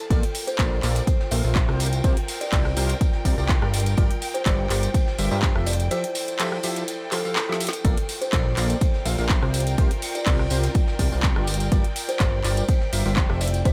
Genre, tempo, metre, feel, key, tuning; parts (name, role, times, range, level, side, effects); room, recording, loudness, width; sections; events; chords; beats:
piano house; 124 BPM; 4/4; straight; C mixolydian; A4 = 444 Hz
muted symphonic violin section; sustained chords; 0.0-13.7 s; G5 to A5; -40 LUFS; equal; sidechain pumping
rich chamber string section; texture; 0.0-13.7 s; E4 to D5; -40 LUFS; equal
percussive organ stab; riff; 0.1-13.7 s; F3 to F5; -34 LUFS; equal; analog chorus, sidechain pumping
fat analog bass; bass; 0.1-13.7 s; F1 to G2; -27 LUFS; equal; sidechain pumping
electronic kick drum; drums; 0.1-13.7 s; -24 LUFS; equal; overdrive, studio ambience
garage drum kit; drums; 0.1-13.7 s; handclaps, hi-hat, rim click, snare drum; -31 LUFS; equal; studio ambience
vintage brush drum kit; drums; 0.1-13.7 s; hi-hat, ride cymbal, snare drum; -42 LUFS; equal; sidechain pumping on cymbals, high-pass filter on cymbals, studio ambience, sidechain pumping on hats, high-pass filter on hats, high-pass filter on snare, high-pass filter on room
tambourine; percussion; 0.1-13.7 s; -39 LUFS; equal
buzzing kalimba; melody; 0.5-13.7 s; A4 to E5; -34 LUFS; equal; tape echo
small room ambience; -23 LUFS; mono
0.0-13.7 A section
break 5.9-7.8; drum fill 7.4-7.8
0.1 Bbmaj7; 1.8 C7sus4; 3.7 Gm7; 5.7 Fmaj9; 7.8 Bbmaj7; 9.5 C7sus4; 11.5 Gm7
| 0.10 0.59 1.07 1.56 | 2.04 2.52 3.01 3.49 | 3.98 4.46 4.94 5.43 | 5.91 6.39 6.88 7.36 | 7.85 8.33 8.81 9.30 | 9.78 10.27 10.75 11.23 | 11.72 12.20 12.69 13.17 | 13.65